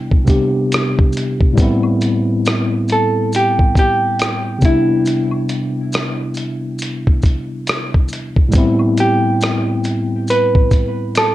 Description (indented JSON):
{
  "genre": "lo-fi hip hop",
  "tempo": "69 BPM",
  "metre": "4/4",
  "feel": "swing 59% on 16ths",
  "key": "A minor",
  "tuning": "A4 = 440 Hz",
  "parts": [
    { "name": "tine electric piano", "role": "accompaniment", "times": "0.0-11.3 s", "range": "A2 to G4", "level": "-17 LUFS", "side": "left 1 dB", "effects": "medium stereo tremolo, low-pass filter, plate reverb" },
    { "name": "lo-fi sampler-style drum kit", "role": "drums", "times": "0.1-11.3 s", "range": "hi-hat, kick drum, rim click", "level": "-15 LUFS", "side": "equal", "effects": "none" },
    { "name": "maracas and woodblock", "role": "percussion", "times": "0.3-11.3 s", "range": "none", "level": "-34 LUFS", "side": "left 1 dB", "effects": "none" },
    { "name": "vintage hollow-body jazz guitar", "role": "melody", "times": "2.9-11.3 s", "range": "E4 to B4", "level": "-18 LUFS", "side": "right 1 dB", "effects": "low-pass filter, plate reverb, analog delay" }
  ],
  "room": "moderate studio reverb, RT60 0.6 s",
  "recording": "cassette tape",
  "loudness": "-13 LUFS",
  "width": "side -15 dB against mid",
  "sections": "0.0-11.3 A section",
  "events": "none",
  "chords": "0.0 Cmaj7; 1.6 Am9; 4.6 Cmaj7; 8.5 Am9"
}